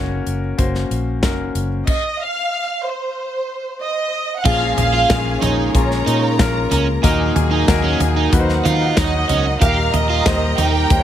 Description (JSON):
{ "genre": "piano-driven pop", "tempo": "93 BPM", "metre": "4/4", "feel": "straight", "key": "Bb minor", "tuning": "A4 = 440 Hz", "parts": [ { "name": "clear grand piano", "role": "accompaniment", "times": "0.0-11.0 s", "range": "Bb2 to Db5", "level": "-22 LUFS", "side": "left 4 dB", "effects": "none" }, { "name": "vintage muted fingered electric bass", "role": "bass", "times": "0.0-11.0 s", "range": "Gb1 to Eb3", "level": "-20 LUFS", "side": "equal", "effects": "none" }, { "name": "modern studio drum kit", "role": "drums", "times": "0.3-11.0 s", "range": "crash cymbal, hi-hat, kick drum, snare drum, toms", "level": "-20 LUFS", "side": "equal", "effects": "none" }, { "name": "warm studio violin section", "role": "melody", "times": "1.9-11.0 s", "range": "C5 to G5", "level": "-21 LUFS", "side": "right 2 dB", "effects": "none" }, { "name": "warm symphonic violin section", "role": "second line", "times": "4.5-11.0 s", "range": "Eb4 to Bb5", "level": "-25 LUFS", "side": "left 1 dB", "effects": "none" }, { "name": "warm studio string section", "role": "sustained chords", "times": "4.5-11.0 s", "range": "Db3 to G4", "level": "-29 LUFS", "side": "left 1 dB", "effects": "none" }, { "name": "overdriven semi-hollow guitar", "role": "riff", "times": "4.5-10.9 s", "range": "Db4 to G4", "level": "-21 LUFS", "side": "right 8 dB", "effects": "none" } ], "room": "light reverb", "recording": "none", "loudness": "-15 LUFS", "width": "side -10 dB against mid", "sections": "0.0-4.5 A section; 4.5-11.0 B section", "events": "none", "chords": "0.0 Gb; 1.9 N.C.; 4.5 Bbm7; 7.0 Ebm; 9.6 Eb" }